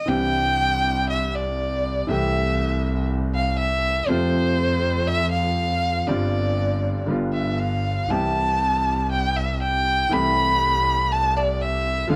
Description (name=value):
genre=tango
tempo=120 BPM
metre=4/4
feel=rubato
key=C major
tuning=A4 = 440 Hz
part: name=warm violin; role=second line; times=0.0-12.2 s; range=C5 to B5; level=-25 LUFS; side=equal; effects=none
part: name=clear concert grand piano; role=accompaniment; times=0.1-12.2 s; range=G1 to G4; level=-28 LUFS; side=equal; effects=none
part: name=clear double bass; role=bass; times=0.1-12.2 s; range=G1 to F2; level=-28 LUFS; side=equal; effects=none
room=light reverb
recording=none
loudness=-22 LUFS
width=mono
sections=0.1-12.2 A section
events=violin solo 0.1-12.2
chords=0.1 Cadd9; 2.1 Am7/C; 4.1 F; 6.1 G7sus4; 7.1 G7; 8.1 C; 10.1 Am7/C